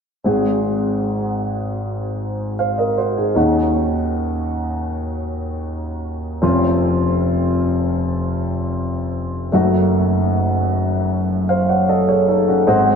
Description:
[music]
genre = pop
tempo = 77 BPM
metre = 4/4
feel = straight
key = unclear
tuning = A4 = 441 Hz
[part]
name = warm baby grand piano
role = accompaniment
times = 0.2-13.0 s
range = F1 to Gb5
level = -16 LUFS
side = equal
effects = wide subtle chorus
[sound]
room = wet plate reverb, RT60 2.8 s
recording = dreamy mix soaked in reverb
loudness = -17 LUFS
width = side -6 dB against mid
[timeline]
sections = 0.3-12.7 A section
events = none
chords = 0.3 Ab7; 3.4 Ebm7; 6.4 Dbmaj7/F; 9.5 Gbm6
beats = | 0.26 1.04 1.82 2.59 | 3.36 4.13 4.89 5.66 | 6.43 7.20 7.97 8.75 | 9.53 10.31 11.09 11.89 | 12.68

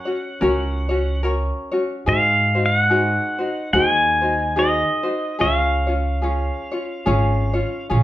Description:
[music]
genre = Hawaiian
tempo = 72 BPM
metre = 4/4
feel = swing 58% on 8ths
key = Db major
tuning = A4 = 439 Hz
[part]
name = pedal steel guitar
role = melody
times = 0.0-7.9 s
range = Eb5 to Ab5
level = -21 LUFS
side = equal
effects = none
[part]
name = tenor ukulele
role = accompaniment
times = 0.0-8.0 s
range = Db4 to Db5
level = -22 LUFS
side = left 1 dB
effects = none
[part]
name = upright bass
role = bass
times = 0.4-8.0 s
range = Ab1 to Ab2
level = -22 LUFS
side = right 1 dB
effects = none
[sound]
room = moderate large studio reverb, RT60 0.8 s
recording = band playing live in one room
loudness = -17 LUFS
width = side -14 dB against mid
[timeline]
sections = 0.0-8.0 A section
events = none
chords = 0.0 Gb; 2.1 Ab7; 5.4 Db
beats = 0.41 1.25 | 2.08 2.91 3.74 4.58 | 5.41 6.24 7.07 7.90

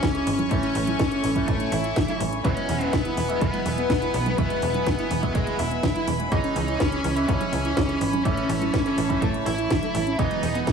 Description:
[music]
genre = italo disco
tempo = 124 BPM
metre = 4/4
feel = straight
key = unclear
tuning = A4 = 440 Hz
[part]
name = high-gain lead guitar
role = melody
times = 0.0-10.7 s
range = G#3 to E5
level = -27 LUFS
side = left 1 dB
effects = distortion, tape echo
[part]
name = rich chamber string section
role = sustained chords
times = 0.0-10.7 s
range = G#4 to C#6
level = -31 LUFS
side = left 1 dB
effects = none
[part]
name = warbly dusty pluck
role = arpeggios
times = 0.0-10.7 s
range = E3 to A4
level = -32 LUFS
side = left 4 dB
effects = chorus, digital delay
[part]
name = electric guitar with an envelope filter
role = stabs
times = 0.0-10.7 s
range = E3 to G#4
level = -31 LUFS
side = right 8 dB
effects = none
[part]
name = tight sequencer bass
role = bass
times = 0.0-10.7 s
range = E1 to C#2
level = -29 LUFS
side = right 1 dB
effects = digital delay
[part]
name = electronic kick drum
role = drums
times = 0.0-10.7 s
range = none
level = -29 LUFS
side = right 1 dB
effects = overdrive
[part]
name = house drum kit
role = drums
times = 0.0-10.7 s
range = congas, hi-hat, snare drum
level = -30 LUFS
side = right 1 dB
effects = overdrive
[sound]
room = light reverb, digital ambience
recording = heavily compressed radio sound, multiband compression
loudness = -21 LUFS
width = side -6 dB against mid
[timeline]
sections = 0.0-10.7 A section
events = none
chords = 0.0 C#m; 0.5 A; 2.4 Eadd9; 6.3 C#m; 8.3 A; 10.2 Eadd9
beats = 0.03 | 0.51 0.99 1.48 1.96 | 2.45 2.93 3.41 3.90 | 4.38 4.87 5.35 5.83 | 6.32 6.80 7.29 7.77 | 8.25 8.74 9.22 9.70 | 10.19 10.67

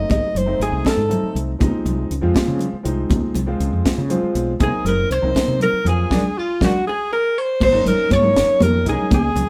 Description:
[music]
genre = electric jazz fusion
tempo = 80 BPM (dotted quarters)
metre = 6/8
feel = straight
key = Ab mixolydian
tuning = A4 = 440 Hz
[part]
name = clear alto saxophone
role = melody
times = 0.0-1.4, 4.6-9.5 s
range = F4 to Eb5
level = -22 LUFS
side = equal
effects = none
[part]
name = warm baby grand piano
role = accompaniment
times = 0.0-9.1 s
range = F3 to C5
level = -27 LUFS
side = equal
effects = none
[part]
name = woody fretless electric bass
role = bass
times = 0.0-9.5 s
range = Gb1 to Db3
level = -24 LUFS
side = equal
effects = none
[part]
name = tight funk drum kit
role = drums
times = 0.1-9.5 s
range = crash cymbal, hi-hat, kick drum, snare drum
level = -24 LUFS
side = equal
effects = none
[part]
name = congas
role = percussion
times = 0.1-9.5 s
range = none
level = -25 LUFS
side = equal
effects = none
[part]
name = archtop guitar, miked and amplified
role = second line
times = 0.6-1.4, 4.6-9.5 s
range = F4 to Db5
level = -29 LUFS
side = equal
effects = none
[sound]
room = moderate studio reverb, RT60 0.9 s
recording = band playing live in one room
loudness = -19 LUFS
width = mono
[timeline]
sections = 0.0-7.6 A section; 7.6-9.5 B section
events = grand piano fill 3.9-4.6; band accent 6.1-7.6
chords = 0.0 Ab7b9; 1.6 Dbmaj9; 4.6 Ab13/Gb; 6.1 Bb7; 7.6 Ab9sus4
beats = | 0.10 0.85 | 1.60 2.36 | 3.11 3.86 | 4.61 5.36 | 6.11 6.86 | 7.61 8.36 | 9.11

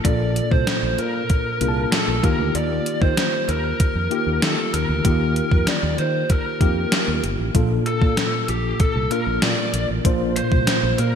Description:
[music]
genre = 1980s-style pop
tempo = 96 BPM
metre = 4/4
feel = straight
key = Bb major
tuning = A4 = 440 Hz
[part]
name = mellow tine electric piano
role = accompaniment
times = 0.0-11.2 s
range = Bb2 to A5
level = -24 LUFS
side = left 1 dB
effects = medium stereo tremolo
[part]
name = mellow fretless electric bass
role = bass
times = 0.0-11.2 s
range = G1 to Eb3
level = -24 LUFS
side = equal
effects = none
[part]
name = gated 80s digital drum machine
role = drums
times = 0.0-11.1 s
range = hi-hat, kick drum, snare drum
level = -21 LUFS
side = equal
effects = gated reverb, gated reverb snare, overdrive
[part]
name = lead guitar through a small cranked amp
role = melody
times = 0.1-11.2 s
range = G4 to D5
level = -24 LUFS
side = equal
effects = overdrive, ping-pong delay
[sound]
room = light reverb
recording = bright 1980s-style digital production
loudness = -18 LUFS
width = side -7 dB against mid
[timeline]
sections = 0.0-11.2 A section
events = none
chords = 0.0 Bbmaj7; 2.2 Ebadd9; 7.5 Bbmaj7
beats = | 0.05 0.67 1.30 1.92 | 2.55 3.17 3.80 4.42 | 5.05 5.67 6.30 6.92 | 7.55 8.17 8.80 9.42 | 10.05 10.67

